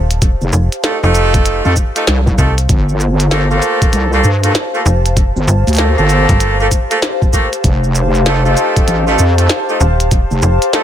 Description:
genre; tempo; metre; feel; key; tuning
glitch hop; 97 BPM; 4/4; swing 64% on 16ths; unclear; A4 = 440 Hz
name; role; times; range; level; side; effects
slap-like FM bass; bass; 0.0-10.6 s; Eb1 to C2; -13 LUFS; equal; none
warbly tape-like pad; texture; 0.0-10.8 s; G4 to A5; -19 LUFS; left 1 dB; chorus, built-in reverb, sidechain pumping
glitchy drum kit; drums; 0.1-10.8 s; hi-hat, rim click, shaker, snare drum; -18 LUFS; equal; none
electronic kick drum; drums; 0.2-10.3 s; none; -12 LUFS; equal; overdrive
wobble bass; bass; 0.4-10.4 s; F1 to G2; -13 LUFS; equal; chorus, overdrive
warm horn section; stabs; 0.8-10.8 s; A3 to A4; -17 LUFS; right 2 dB; sidechain pumping, tape echo
room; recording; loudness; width
digital ambience; none; -10 LUFS; side -10 dB against mid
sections
0.0-10.8 A section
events
none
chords
0.0 F9; 2.7 Gm9; 7.6 F9

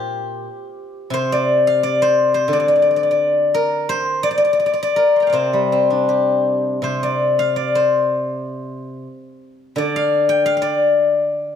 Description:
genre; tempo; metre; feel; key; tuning
chinese traditional, Chinese solo plucked strings; 78-89 BPM; 4/4; rubato; unclear; A4 = 441 Hz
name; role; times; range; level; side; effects
steel-string zither; solo; 0.0-11.6 s; Bb2 to C6; -16 LUFS; left 2 dB; none
room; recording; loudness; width
wet scoring stage reverb, RT60 1.6 s; none; -15 LUFS; side -8 dB against mid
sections
0.0-11.6 A section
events
none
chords
none

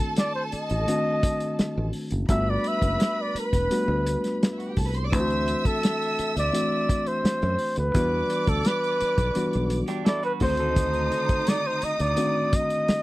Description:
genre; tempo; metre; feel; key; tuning
lush 1970s-style soul; 85 BPM; 4/4; straight; unclear; A4 = 436 Hz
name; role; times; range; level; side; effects
warm studio violin section; second line; 0.0-13.0 s; Eb4 to E6; -34 LUFS; right 2 dB; none
reed electric piano; accompaniment; 0.0-13.0 s; D3 to F#4; -29 LUFS; left 1 dB; none
breathy flugelhorn; melody; 0.2-13.0 s; A4 to E5; -26 LUFS; equal; none
warm soul drum kit; drums; 0.2-13.0 s; hi-hat, kick drum, snare drum; -25 LUFS; equal; none
fingered electric bass; bass; 0.5-12.9 s; E1 to F#2; -27 LUFS; equal; none
electric guitar through a small old amp; riff; 9.9-11.6 s; D4 to C5; -34 LUFS; right 7 dB; none
room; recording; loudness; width
light reverb; dry, close 1970s-style studio recording; -22 LUFS; side -18 dB against mid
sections
0.0-13.0 A section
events
none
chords
0.0 D7b9; 2.3 Gmaj7; 5.1 D9; 7.9 Em7; 10.4 D7b9

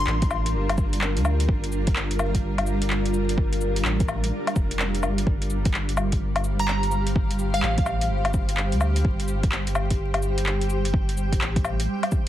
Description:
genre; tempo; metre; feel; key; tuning
future garage; 127 BPM; 4/4; swing 64% on 16ths; unclear; A4 = 440 Hz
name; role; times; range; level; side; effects
glassy wavetable pluck; melody; 0.0-0.6, 6.6-8.2 s; F5 to C6; -29 LUFS; left 1 dB; chorus, analog delay
granular cloud pad; sustained chords; 0.0-12.3 s; G3 to G5; -28 LUFS; right 1 dB; built-in reverb, sidechain pumping
warm sub bass; bass; 0.0-11.9 s; F1 to D2; -26 LUFS; equal; sidechain pumping
deep house drum kit; drums; 0.1-12.2 s; cabasa, handclaps, hi-hat, woodblock; -28 LUFS; left 2 dB; overdrive
electronic kick drum; drums; 0.2-12.2 s; none; -24 LUFS; equal; overdrive
room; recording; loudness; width
little or no reverb; dense, heavily limited modern master, vinyl crackle; -21 LUFS; side -12 dB against mid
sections
0.0-12.3 A section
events
none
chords
0.0 Gm7; 5.3 Fsus2/G

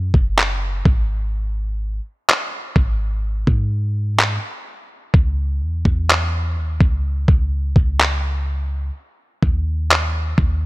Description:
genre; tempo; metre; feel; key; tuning
contemporary R&B; 63 BPM; 4/4; straight; C# minor; A4 = 440 Hz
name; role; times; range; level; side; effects
clean 808-style bass; bass; 0.0-10.7 s; F#1 to G#2; -20 LUFS; equal; none
dusty soul sampler-style drum kit; drums; 0.1-10.6 s; handclaps, kick drum; -16 LUFS; equal; none
room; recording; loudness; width
digital ambience; none; -17 LUFS; side -20 dB against mid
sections
0.0-10.7 A section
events
break 0.0-10.7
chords
none

